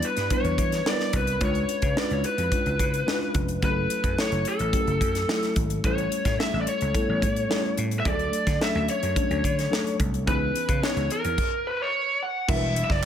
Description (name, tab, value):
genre	polished 1980s jazz-funk pop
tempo	108 BPM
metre	4/4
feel	straight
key	unclear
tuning	A4 = 440 Hz
part	lead guitar through a small cranked amp	melody	0.0-13.1 s	A4 to F#5	-27 LUFS	left 1 dB	overdrive
part	bell-like FM electric piano	accompaniment	0.0-13.1 s	E3 to B4	-29 LUFS	left 1 dB	wide subtle chorus
part	crisp fusion drum kit	drums	0.0-13.0 s	crash cymbal, hi-hat, kick drum, snare drum	-28 LUFS	equal	none
part	vintage slap bass	bass	0.2-13.0 s	E1 to E3	-28 LUFS	equal	none
room	light reverb, studio ambience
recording	none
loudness	-22 LUFS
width	side -9 dB against mid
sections	0.0-12.5 A section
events	none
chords	0.0 Em7; 1.4 C#7b9; 3.6 F#m7; 5.8 A7; 8.1 Dmaj7; 10.3 C#m9; 11.4 N.C.; 12.5 Em9